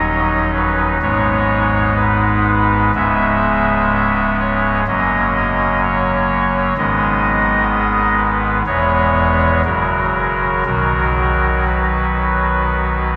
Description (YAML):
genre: classical, chorale-style piece for pipe organ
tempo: 59-65 BPM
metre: 4/4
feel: rubato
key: B major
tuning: A4 = 440 Hz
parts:
  - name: pipe organ, soft reed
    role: solo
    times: 0.0-13.2 s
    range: C#1 to E5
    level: -16 LUFS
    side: equal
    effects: none
room: wet cathedral reverb, RT60 5.1 s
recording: recorded in a church or concert hall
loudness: -16 LUFS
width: mono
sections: 0.0-13.2 A section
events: none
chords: 0.0 D#m7; 1.0 G#m; 3.0 C#m7; 4.9 F#; 6.8 G#m; 8.7 C#m7/E; 9.7 F#; 10.7 B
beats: 0.08 1.02 1.97 | 2.96 3.93 4.88 5.84 | 6.78 7.71 8.67 9.65 | 10.66 11.68 12.69